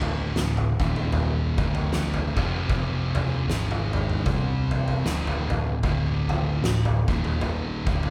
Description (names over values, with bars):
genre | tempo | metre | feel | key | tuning
stoner and doom metal | 76 BPM | 4/4 | swing 58% on 8ths | D phrygian | A4 = 440 Hz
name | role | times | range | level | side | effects
thick fuzz guitar | riff | 0.0-8.1 s | D2 to C4 | -31 LUFS | equal | distortion
thick fuzz guitar | riff | 0.0-8.1 s | D2 to C4 | -32 LUFS | equal | distortion
fingered electric bass | bass | 0.0-8.1 s | D1 to C2 | -32 LUFS | equal | overdrive
oversized low-tuned drum kit | drums | 0.0-8.1 s | kick drum, snare drum, toms | -29 LUFS | equal | none
room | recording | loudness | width
light reverb | band playing live in one room | -25 LUFS | mono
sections
0.0-8.1 A section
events
none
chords
0.0 D5; 0.7 Eb5; 1.5 D5; 2.3 F5; 3.5 G#5; 4.3 C5; 5.1 D5; 7.0 Eb5